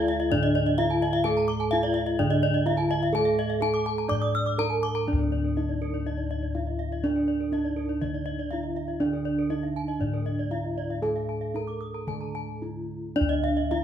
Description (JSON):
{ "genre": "Balinese gamelan", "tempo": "109-129 BPM", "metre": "4/4", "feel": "straight", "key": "D pelog", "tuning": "A4 = 440 Hz", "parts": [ { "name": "gamelan-type bronze metallophone", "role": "melody", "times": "0.0-13.8 s", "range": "D4 to D5", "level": "-30 LUFS", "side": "equal", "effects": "none" }, { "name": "gamelan-type bronze metallophone", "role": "accompaniment", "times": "0.0-5.1, 9.0-13.2 s", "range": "D3 to D4", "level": "-33 LUFS", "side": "right 4 dB", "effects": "none" }, { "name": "gamelan-type bronze metallophone", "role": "arpeggios", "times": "0.0-13.7 s", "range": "Bb4-40c to Eb6", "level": "-34 LUFS", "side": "right 6 dB", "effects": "none" }, { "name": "gamelan-type bossed gongs", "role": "bass", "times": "0.0-13.8 s", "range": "D2 to A4-45c", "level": "-28 LUFS", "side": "equal", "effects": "none" }, { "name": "gamelan-type bronze metallophone", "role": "arpeggios", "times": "0.1-13.8 s", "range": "D5 to E6+50c", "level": "-32 LUFS", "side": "left 3 dB", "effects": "none" } ], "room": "moderate large studio reverb, RT60 0.9 s", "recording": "band playing live in one room", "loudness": "-24 LUFS", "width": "side -9 dB against mid", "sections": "0.0-5.1 A section; 5.1-13.2 B section", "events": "none", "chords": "none", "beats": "0.31 0.78 | 1.25 1.71 2.19 2.66 | 3.14 3.62 4.10 4.59 | 5.08 5.57 6.06 6.55 | 7.04 7.53 8.03 8.52 | 9.01 9.50 10.01 10.51 | 11.03 11.55 12.08 12.62 | 13.17 13.72" }